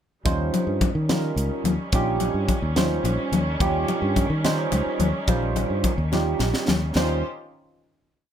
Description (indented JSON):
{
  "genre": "electric jazz fusion",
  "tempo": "72 BPM (dotted quarters)",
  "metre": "6/8",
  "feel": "straight",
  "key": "Eb mixolydian",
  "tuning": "A4 = 440 Hz",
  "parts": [
    { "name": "barky tine electric piano", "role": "accompaniment", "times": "0.2-7.2 s", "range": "G3 to C5", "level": "-26 LUFS", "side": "right 4 dB", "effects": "overdrive, analog chorus" },
    { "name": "dark chamber string section", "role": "sustained chords", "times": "0.2-7.2 s", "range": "Eb3 to C5", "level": "-31 LUFS", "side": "right 1 dB", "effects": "none" },
    { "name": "fingered electric bass", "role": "bass", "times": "0.3-7.2 s", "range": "Bb1 to Eb3", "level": "-25 LUFS", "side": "equal", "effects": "none" },
    { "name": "crisp fusion drum kit", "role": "drums", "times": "0.3-7.1 s", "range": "hi-hat, kick drum, snare drum", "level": "-26 LUFS", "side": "equal", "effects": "none" },
    { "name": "congas", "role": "percussion", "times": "0.3-7.2 s", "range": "none", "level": "-26 LUFS", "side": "left 5 dB", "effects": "none" }
  ],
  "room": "light reverb",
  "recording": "none",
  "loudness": "-21 LUFS",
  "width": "side -9 dB against mid",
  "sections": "0.3-7.0 groove; 7.0-8.3 final chord",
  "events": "drum fill 6.1-7.0",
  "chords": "0.3 Eb13"
}